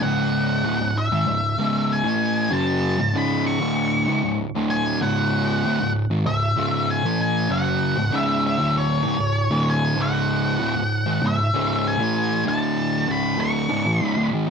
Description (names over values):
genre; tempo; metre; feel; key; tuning
metal; 97 BPM; 4/4; straight; unclear; A4 = 445 Hz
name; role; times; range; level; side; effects
octave-fuzz lead guitar; melody; 0.0-14.3 s; C#5 to C#6; -24 LUFS; left 1 dB; distortion, slapback echo
fuzz guitar; riff; 0.0-14.5 s; C#2 to A3; -21 LUFS; equal; distortion
room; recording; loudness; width
little or no reverb; dry, close 1970s-style studio recording; -19 LUFS; side -6 dB against mid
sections
0.0-14.5 A section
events
none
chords
0.0 C#m; 12.5 D5; 13.1 C#5